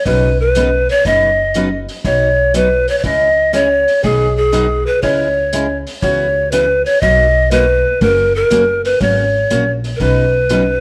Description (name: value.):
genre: country, western swing.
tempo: 121 BPM.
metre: 4/4.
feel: swing 68% on 8ths.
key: B major.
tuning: A4 = 445 Hz.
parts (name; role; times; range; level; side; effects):
breathy bright large pan pipes; melody; 0.0-10.8 s; G#4 to D#5; -15 LUFS; equal; none.
picked steel-string acoustic guitar; accompaniment; 0.1-10.6 s; B2 to B4; -23 LUFS; equal; none.
upright bass; bass; 0.1-10.8 s; F#1 to C#2; -21 LUFS; equal; none.
vintage drum kit; drums; 0.1-10.7 s; hi-hat, kick drum; -30 LUFS; equal; none.
room: moderate plate reverb, RT60 1.4 s, small room ambience.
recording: none.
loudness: -14 LUFS.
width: mono.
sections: 0.0-10.8 A section.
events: none.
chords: 0.1 Badd9; 2.0 B; 3.0 C#m; 4.0 G#m7/B; 5.0 C#m; 6.0 F#7sus4/C#; 7.0 Bmaj7; 8.0 F#; 10.0 Badd9.